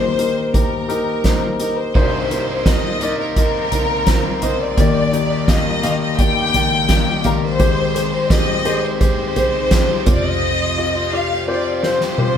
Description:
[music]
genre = piano-driven pop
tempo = 85 BPM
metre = 4/4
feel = straight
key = unclear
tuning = A4 = 439 Hz
[part]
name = warm studio violin section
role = melody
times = 0.0-12.4 s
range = Bb4 to G5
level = -20 LUFS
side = left 3 dB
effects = none
[part]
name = warm concert grand piano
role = accompaniment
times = 0.0-12.4 s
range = C2 to F5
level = -20 LUFS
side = left 2 dB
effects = none
[part]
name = warm studio string section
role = sustained chords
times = 0.0-1.9 s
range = Eb3 to G5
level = -32 LUFS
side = equal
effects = none
[part]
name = soft-mallet drum kit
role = drums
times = 0.2-12.4 s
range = crash cymbal, hi-hat, kick drum, snare drum, toms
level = -18 LUFS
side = right 1 dB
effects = none
[part]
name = raw garage guitar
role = riff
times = 1.9-12.4 s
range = F2 to G4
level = -27 LUFS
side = right 3 dB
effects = overdrive, phaser
[sound]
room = moderate studio reverb, RT60 0.8 s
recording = band playing live in one room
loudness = -15 LUFS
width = side -8 dB against mid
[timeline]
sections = 0.0-2.0 A section; 2.0-12.4 B section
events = drum fill 11.8-12.4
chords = 0.0 Eb; 2.0 Cm7; 4.8 Ebmaj7; 7.6 Abmaj7; 10.1 Fsus2

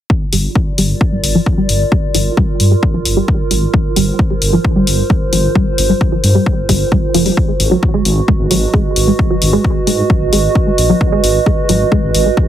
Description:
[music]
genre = driving peak-time techno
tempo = 132 BPM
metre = 4/4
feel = straight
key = G phrygian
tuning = A4 = 439 Hz
[part]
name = electronic kick drum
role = drums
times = 0.1-12.5 s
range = none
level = -14 LUFS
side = equal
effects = overdrive
[part]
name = warbly tape-like pad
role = texture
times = 0.5-12.5 s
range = F4 to Eb5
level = -18 LUFS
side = right 4 dB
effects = chorus, built-in reverb, sidechain pumping
[part]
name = tight sequenced synth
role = riff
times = 0.3-12.3 s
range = F3 to Ab3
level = -17 LUFS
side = equal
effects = chorus, phaser, sidechain pumping, digital delay
[part]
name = dark detuned saw bass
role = bass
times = 0.3-12.3 s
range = F1 to Ab2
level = -15 LUFS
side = equal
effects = sidechain pumping
[part]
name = electronic hi-hat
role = drums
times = 0.3-12.2 s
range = none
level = -19 LUFS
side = left 4 dB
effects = none
[sound]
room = light reverb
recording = heavily compressed radio sound, multiband compression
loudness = -11 LUFS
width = side -11 dB against mid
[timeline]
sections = 0.1-12.5 A section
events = filter sweep on synth arpeggio sound 0.1-12.5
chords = 0.1 Gm; 7.4 Abm

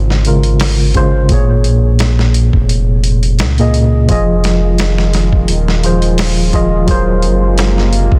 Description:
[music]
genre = trip hop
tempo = 86 BPM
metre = 4/4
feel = swing 54% on 16ths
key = F phrygian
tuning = A4 = 440 Hz
[part]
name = tine electric piano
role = accompaniment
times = 0.0-8.2 s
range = Bb2 to Eb5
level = -16 LUFS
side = equal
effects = harmonic tremolo, tape echo
[part]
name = round analog bass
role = bass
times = 0.0-8.2 s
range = Eb1 to Db2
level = -16 LUFS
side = equal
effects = none
[part]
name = dusty soul sampler-style drum kit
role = drums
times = 0.1-8.2 s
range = hi-hat, kick drum, snare drum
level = -18 LUFS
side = equal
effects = small room ambience
[part]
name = warbly tape-like pad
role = sustained chords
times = 4.7-8.2 s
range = C3 to F4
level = -24 LUFS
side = equal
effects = chorus, built-in reverb
[sound]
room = light reverb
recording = dense, heavily limited modern master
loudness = -12 LUFS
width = mono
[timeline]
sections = 0.0-8.2 A section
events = none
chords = 0.0 Dbmaj7; 1.3 Bbm7; 4.1 Fm7; 6.9 Gbmaj9#11

